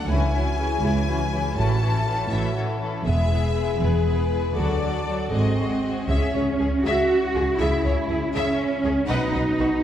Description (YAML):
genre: cinematic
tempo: 80 BPM (dotted quarters)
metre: 6/8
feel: straight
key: C# phrygian, C# minor from 6.1 s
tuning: A4 = 444 Hz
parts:
  - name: clear symphonic violin section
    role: melody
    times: 0.0-9.7 s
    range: G#4 to A5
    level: -31 LUFS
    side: left 4 dB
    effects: none
  - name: rich symphonic violin section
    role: second line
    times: 0.0-9.7 s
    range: E4 to E5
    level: -31 LUFS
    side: left 2 dB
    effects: none
  - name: rich symphonic viola section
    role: accompaniment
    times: 0.0-9.7 s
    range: E3 to B4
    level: -31 LUFS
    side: equal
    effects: none
  - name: dark French horn section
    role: sustained chords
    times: 0.0-9.8 s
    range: B3 to A4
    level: -30 LUFS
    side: left 4 dB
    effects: none
  - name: rich symphonic double bass section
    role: bass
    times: 0.1-9.7 s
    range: E1 to D2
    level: -25 LUFS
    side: right 1 dB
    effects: none
  - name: warm symphonic cello section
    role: bass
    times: 0.1-9.8 s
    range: C#2 to F#4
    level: -25 LUFS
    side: right 2 dB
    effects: none
room: wet concert hall reverb, RT60 2.0 s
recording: heard from further back in the room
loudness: -20 LUFS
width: side -10 dB against mid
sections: 0.0-6.1 A section; 6.1-9.8 B section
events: none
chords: 0.1 C#m; 1.6 A; 3.0 E; 4.5 D; 5.3 G#7; 6.1 C#m; 9.1 B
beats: | 0.09 0.83 | 1.57 2.31 | 3.05 3.80 | 4.55 5.32 | 6.09 6.85 | 7.60 8.35 | 9.09